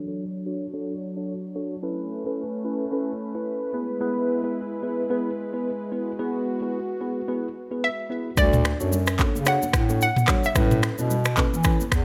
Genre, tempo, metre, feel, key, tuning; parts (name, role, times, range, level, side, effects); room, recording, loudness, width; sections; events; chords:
afrobeats; 110 BPM; 4/4; swing 58% on 16ths; A4 = 441 Hz
mellow tine electric piano; accompaniment; 0.0-11.8 s; B3 to D5; -31 LUFS; equal; analog chorus, low-pass filter
warm analog pad; sustained chords; 0.0-8.4 s; F#3 to C#5; -33 LUFS; equal; chorus, low-pass filter
hollow square pluck; melody; 7.8-12.0 s; D5 to F#5; -28 LUFS; equal; chorus
mellow bass clarinet; bass; 8.4-12.0 s; D2 to E3; -27 LUFS; equal
afro-pop drum kit; drums; 8.4-12.0 s; finger snaps, handclaps, kick drum, rim click, shaker, toms; -24 LUFS; equal
congas; percussion; 8.4-11.9 s; -35 LUFS; equal
light reverb; -25 LUFS; mono
0.0-8.4 A section; 8.4-12.0 B section
filter sweep 0.0-8.4
0.0 Dmaj7; 1.8 Aadd9; 3.7 E; 8.4 Dmaj7; 10.6 Aadd9